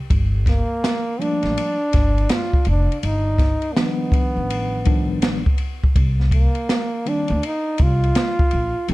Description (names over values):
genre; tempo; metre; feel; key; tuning
hip hop, jazz-hop; 82 BPM; 4/4; swing 65% on 16ths; G minor; A4 = 440 Hz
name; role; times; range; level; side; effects
upright bass; bass; 0.1-8.9 s; F1 to D2; -20 LUFS; equal; none
open jazz drum kit; drums; 0.1-8.9 s; hi-hat, kick drum, ride cymbal, snare drum; -20 LUFS; equal; none
mellow trombone; melody; 0.5-8.9 s; Bb3 to F4; -24 LUFS; right 1 dB; tape echo
mellow tine electric piano; accompaniment; 1.2-8.9 s; Eb3 to Eb4; -24 LUFS; left 1 dB; medium stereo tremolo
room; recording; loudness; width
little or no reverb; dark, warm production; -17 LUFS; side -19 dB against mid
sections
0.1-8.9 A section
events
none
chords
0.1 Gm9; 3.0 G7b13; 6.0 C7sus2